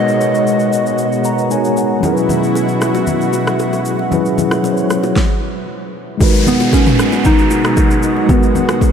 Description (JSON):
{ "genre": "amapiano", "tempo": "115 BPM", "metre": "4/4", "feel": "straight", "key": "G# minor", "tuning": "A4 = 440 Hz", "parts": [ { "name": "soft struck synth lead", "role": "melody", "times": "0.0-1.7, 6.5-8.8 s", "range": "B3 to D#5", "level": "-17 LUFS", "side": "equal", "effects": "chorus, ping-pong delay" }, { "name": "mellow tine electric piano", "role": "accompaniment", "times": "0.0-8.9 s", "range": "F#3 to A#5", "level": "-17 LUFS", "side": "equal", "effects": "medium stereo tremolo" }, { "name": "lush unison pad", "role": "sustained chords", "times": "0.0-8.9 s", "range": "B2 to F#4", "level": "-19 LUFS", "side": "equal", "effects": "chorus, sidechain pumping" }, { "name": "downlifter", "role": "sound effects", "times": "0.0-2.0, 6.2-8.9 s", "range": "none", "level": "-24 LUFS", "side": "equal", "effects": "none" }, { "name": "deep house drum kit", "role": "drums", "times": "0.1-8.9 s", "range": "kick drum, rim click, shaker, snare drum, toms", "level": "-17 LUFS", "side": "equal", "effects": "none" }, { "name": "congas and bongos", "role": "percussion", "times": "2.0-8.9 s", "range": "none", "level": "-24 LUFS", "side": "left 4 dB", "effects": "none" } ], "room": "wet cathedral reverb, RT60 5.4 s", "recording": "dreamy mix soaked in reverb", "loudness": "-12 LUFS", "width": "side -7 dB against mid", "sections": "0.0-6.2 A section; 6.2-8.9 B section", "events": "tine electric piano fill 1.0-2.0; stop 5.2-6.2", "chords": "0.0 G#m9; 2.0 F#9sus4; 6.2 G#m9" }